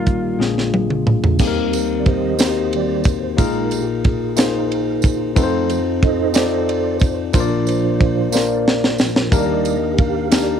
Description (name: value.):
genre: slow gospel.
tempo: 60 BPM (dotted quarters).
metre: 6/8.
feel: straight.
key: Eb major.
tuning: A4 = 440 Hz.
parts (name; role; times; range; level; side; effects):
breathy tenor saxophone; melody; 0.0-0.7 s; F4; -26 LUFS; right 1 dB; cassette tape.
tine electric piano; accompaniment; 0.0-10.6 s; Bb1 to D5; -20 LUFS; left 8 dB; slow stereo tremolo.
mellow tonewheel organ; sustained chords; 0.0-10.6 s; Bb2 to F5; -22 LUFS; right 11 dB; slow rotary speaker, chorus vibrato.
tight funk drum kit; drums; 0.1-10.5 s; crash cymbal, hi-hat, kick drum, ride cymbal, snare drum, toms; -18 LUFS; right 1 dB; cassette tape.
tambourine; percussion; 1.4-10.6 s; none; -30 LUFS; right 13 dB; none.
room: light reverb.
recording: home recording on cassette.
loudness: -15 LUFS.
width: side -8 dB against mid.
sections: 0.0-1.4 A section; 1.4-10.6 B section.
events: drum fill 0.4-1.4, 8.3-9.3; tonewheel organ solo 1.4-10.6.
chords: 0.4 Bb7; 1.4 Eb6; 3.4 Bb7sus4; 5.4 F7; 7.3 Bb; 9.3 Ebmaj7.